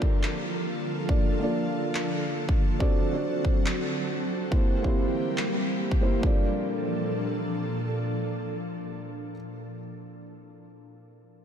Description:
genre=future bass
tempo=140 BPM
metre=4/4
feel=half-time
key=Bb lydian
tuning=A4 = 440 Hz
part: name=felt-muted upright piano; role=accompaniment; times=0.0-11.4 s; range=Bb3 to D5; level=-31 LUFS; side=right 1 dB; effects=sidechain pumping, ping-pong delay
part: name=ethereal airy pad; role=sustained chords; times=0.0-9.3 s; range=Bb2 to A4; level=-30 LUFS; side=equal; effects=ensemble chorus, built-in reverb, sidechain pumping
part: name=electronic kick drum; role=drums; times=0.0-6.3 s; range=none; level=-24 LUFS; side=equal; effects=none
part: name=electronic handclaps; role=drums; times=0.2-5.5 s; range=none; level=-36 LUFS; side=equal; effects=none
room=moderate huge ambient reverb, RT60 3.9 s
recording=dreamy mix soaked in reverb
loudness=-25 LUFS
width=side -8 dB against mid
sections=0.0-6.2 A section; 6.2-9.7 B section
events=none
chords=0.0 Bbmaj7; 2.6 D7; 4.5 C7; 6.2 Bbmaj7

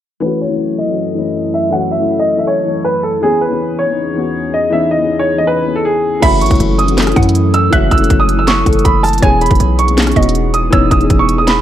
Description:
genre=hip hop, trap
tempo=160 BPM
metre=4/4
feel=half-time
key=F# dorian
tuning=A4 = 440 Hz
part: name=clear concert grand piano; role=melody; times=0.2-11.6 s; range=G#4 to F#6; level=-15 LUFS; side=right 2 dB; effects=low-pass filter, ping-pong delay
part: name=dark concert grand piano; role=accompaniment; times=0.2-11.6 s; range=E3 to A4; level=-17 LUFS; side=left 4 dB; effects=low-pass filter
part: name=hollow soft pad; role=sustained chords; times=0.5-11.6 s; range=E2 to A4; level=-21 LUFS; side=right 1 dB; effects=chorus, low-pass filter
part: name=mallet-like synth pluck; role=second line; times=6.2-11.4 s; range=C#5 to F#5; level=-22 LUFS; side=right 4 dB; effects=chorus, ping-pong delay
part: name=hard-hitting 808-style bass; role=bass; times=6.2-11.6 s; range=E1 to F#2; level=-15 LUFS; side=equal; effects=none
part: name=trap drum kit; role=drums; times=6.2-11.6 s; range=crash cymbal, handclaps, hi-hat, kick drum, rim click, snare drum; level=-14 LUFS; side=equal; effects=none
room=light reverb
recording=none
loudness=-11 LUFS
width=side -11 dB against mid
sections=0.2-6.2 A section; 6.2-11.6 B section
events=filter sweep 0.2-6.2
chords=0.2 F#m7; 3.2 E6; 6.2 F#m7; 9.2 E6

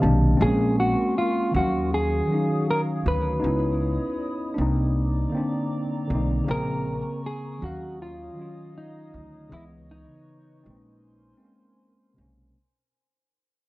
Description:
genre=lo-fi hip hop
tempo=79 BPM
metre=4/4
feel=swing 59% on 16ths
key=Bb minor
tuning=A4 = 440 Hz
part: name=mellow tine electric piano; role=accompaniment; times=0.0-12.6 s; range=C3 to A5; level=-26 LUFS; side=equal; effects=medium stereo tremolo, cassette tape, low-pass filter
part: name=upright bass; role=bass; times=0.0-12.5 s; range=Bb1 to Eb2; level=-25 LUFS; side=equal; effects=transformer saturation
part: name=mellow electric guitar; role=melody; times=0.4-11.4 s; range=Eb4 to Cb5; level=-28 LUFS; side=equal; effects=low-pass filter, tape echo
part: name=warbly tape-like pad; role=sustained chords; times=0.7-12.5 s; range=C4 to Eb6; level=-38 LUFS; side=equal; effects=chorus, built-in reverb, low-pass filter
room=moderate studio reverb, RT60 0.6 s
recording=worn, warbling old tape, cassette tape, warbly pitch drift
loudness=-22 LUFS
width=side -19 dB against mid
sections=0.0-12.6 A section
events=fade-out 0.0-12.6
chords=0.4 Bbm9; 1.5 Ebm9; 3.4 Dbm9; 4.6 Cm9; 6.5 Bbm9; 7.6 Ebm9; 9.5 Dbm9; 10.7 Bbm9

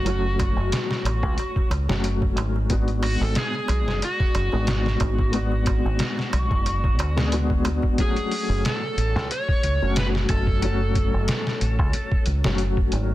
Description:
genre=trip hop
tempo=91 BPM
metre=4/4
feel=swing 55% on 16ths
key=F# minor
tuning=A4 = 442 Hz
part: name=overdriven slide guitar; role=melody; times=0.0-12.2 s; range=F#4 to C#5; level=-29 LUFS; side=equal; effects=tape echo
part: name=felt-muted upright piano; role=accompaniment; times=0.0-13.1 s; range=F#3 to G#4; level=-28 LUFS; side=left 3 dB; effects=tremolo, tape echo
part: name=deep dub fingered electric bass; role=bass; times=0.0-13.1 s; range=F#1 to D2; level=-24 LUFS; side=equal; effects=none
part: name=trip hop sampler-style drum kit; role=drums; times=0.1-13.1 s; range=hi-hat, kick drum, snare drum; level=-25 LUFS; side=equal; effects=none
part: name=darbuka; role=percussion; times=0.1-7.9 s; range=none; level=-35 LUFS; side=right 4 dB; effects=none
room=little or no reverb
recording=dense, heavily limited modern master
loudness=-20 LUFS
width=side -15 dB against mid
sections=0.0-8.0 A section; 8.0-13.1 B section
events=none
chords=0.0 F#m; 2.7 G#m7b5; 8.0 F#m

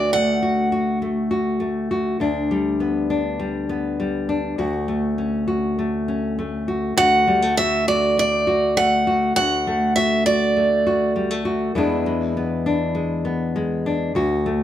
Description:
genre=folk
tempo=100 BPM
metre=4/4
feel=straight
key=D major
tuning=A4 = 440 Hz
part: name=picked steel-string acoustic guitar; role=melody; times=0.0-1.0, 7.0-11.1 s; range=D5 to F#5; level=-18 LUFS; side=right 2 dB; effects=none
part: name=nylon-string guitar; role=accompaniment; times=0.0-14.6 s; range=D2 to F#4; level=-21 LUFS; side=left 2 dB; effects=none
room=moderate large studio reverb, RT60 1.0 s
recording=none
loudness=-18 LUFS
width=side -11 dB against mid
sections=0.0-14.6 A section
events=none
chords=0.0 D; 2.2 G/D; 4.6 A6/D; 7.0 D; 11.7 E7

